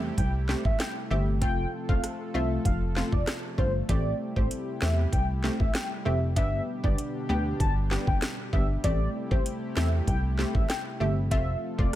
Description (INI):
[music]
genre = dancehall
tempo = 97 BPM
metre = 4/4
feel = straight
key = A minor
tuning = A4 = 440 Hz
[part]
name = analog pluck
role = accompaniment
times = 0.0-12.0 s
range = A3 to G4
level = -34 LUFS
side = left 1 dB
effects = chorus, sidechain pumping
[part]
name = warm analog pad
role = sustained chords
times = 0.0-12.0 s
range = B2 to A4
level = -38 LUFS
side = equal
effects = chorus, sidechain pumping
[part]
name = plucky analog bass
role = bass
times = 0.0-11.9 s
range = F1 to E2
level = -28 LUFS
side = equal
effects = none
[part]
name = warm velvety synth lead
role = melody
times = 0.2-11.9 s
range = C5 to A5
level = -34 LUFS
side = equal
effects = chorus
[part]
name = island pop drum kit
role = drums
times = 0.2-12.0 s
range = hi-hat, kick drum, rim click, snare drum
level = -28 LUFS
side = equal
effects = none
[sound]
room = little or no reverb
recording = none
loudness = -25 LUFS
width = side -13 dB against mid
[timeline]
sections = 0.0-12.0 A section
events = none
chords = 0.0 Am7; 1.4 F; 3.9 Am7; 6.4 G; 8.8 Am7; 11.3 F